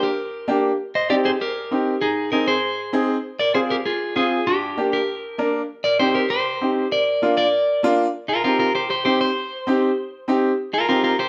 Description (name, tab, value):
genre	latin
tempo	196 BPM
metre	4/4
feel	straight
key	C minor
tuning	A4 = 439 Hz
part	clean electric guitar	melody	0.0-11.3 s	D4 to Eb5	-23 LUFS	equal	spring reverb
part	bright upright piano	accompaniment	0.0-11.1 s	Bb3 to Bb4	-23 LUFS	equal	none
room	moderate studio reverb, RT60 0.5 s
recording	none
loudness	-21 LUFS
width	mono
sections	0.0-8.1 A section; 8.1-11.3 B section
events	clean electric guitar solo 8.1-11.3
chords	0.0 Gm; 0.8 Cm; 2.0 Ab; 3.2 Fm; 4.5 Gm; 5.7 Cm; 6.9 Bb; 8.1 Cm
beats	0.18 0.48 | 0.79 1.10 1.40 1.71 | 2.02 2.32 2.63 2.93 | 3.24 3.55 3.85 4.16 | 4.47 4.77 5.08 5.38 | 5.69 6.00 6.30 6.61 | 6.91 7.22 7.53 7.83 | 8.14 8.44 8.75 9.06 | 9.36 9.67 9.97 10.28 | 10.59 10.89 11.20